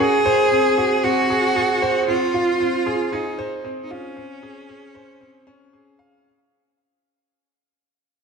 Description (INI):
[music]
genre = electronica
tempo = 115 BPM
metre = 4/4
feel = straight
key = unclear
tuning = A4 = 444 Hz
[part]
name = clear cello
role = melody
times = 0.0-5.7 s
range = Db4 to Ab4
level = -20 LUFS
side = right 1 dB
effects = none
[part]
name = clear upright piano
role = riff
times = 0.0-6.3 s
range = C4 to F5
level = -21 LUFS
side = right 1 dB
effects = tape echo
[sound]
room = wet scoring stage reverb, RT60 1.6 s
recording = none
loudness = -17 LUFS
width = side -5 dB against mid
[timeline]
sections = 0.0-6.3 A section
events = drop 0.0-6.3; fade-out 0.0-6.3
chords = 0.0 Ab7; 2.1 Fm7; 4.2 Dbmaj7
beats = | 0.00 0.52 1.04 1.56 | 2.08 2.60 3.13 3.65 | 4.17 4.69 5.21 5.74